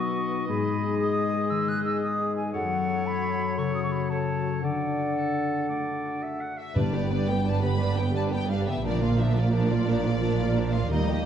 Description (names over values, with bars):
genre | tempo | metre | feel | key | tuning
cinematic, heroic adventure film score | 116 BPM (dotted quarters) | 12/8 | straight | unclear | A4 = 440 Hz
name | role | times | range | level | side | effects
clear clarinet | second line | 0.0-6.5 s | F#4 to A4 | -34 LUFS | left 2 dB | none
clear oboe | second line | 0.0-6.8 s | A4 to F#5 | -36 LUFS | right 1 dB | none
mellow concert flute | second line | 0.0-6.5 s | F#5 to F#6 | -30 LUFS | left 1 dB | none
clear French horn section | sustained chords | 0.0-6.6 s | F#3 to D4 | -30 LUFS | left 3 dB | none
concert harp | arpeggios | 0.0-11.3 s | F#2 to D5 | -32 LUFS | left 7 dB | none
warm symphonic violin section | melody | 6.6-11.3 s | D5 to B5 | -34 LUFS | left 4 dB | none
warm symphonic violin section | second line | 6.8-11.3 s | D4 to Eb5 | -34 LUFS | left 1 dB | none
warm symphonic viola section | accompaniment | 6.8-11.3 s | F3 to G4 | -31 LUFS | right 3 dB | none
dark trombone section | sustained chords | 6.8-11.3 s | F3 to B3 | -32 LUFS | right 5 dB | none
rich symphonic cello section | bass | 6.8-11.3 s | Eb2 to Bb2 | -28 LUFS | right 4 dB | none
rich symphonic double bass section | bass | 6.8-11.3 s | G1 to Eb2 | -29 LUFS | right 4 dB | none
timpani | percussion | 6.8-7.2 s | G2 | -29 LUFS | left 1 dB | none
room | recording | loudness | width
wet scoring stage reverb, RT60 1.8 s | dark, warm production | -24 LUFS | side -8 dB against mid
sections
0.0-6.8 A section; 6.8-11.3 B section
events
none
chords
0.5 G#m; 2.5 F#m; 4.6 D; 6.8 G; 8.8 Bb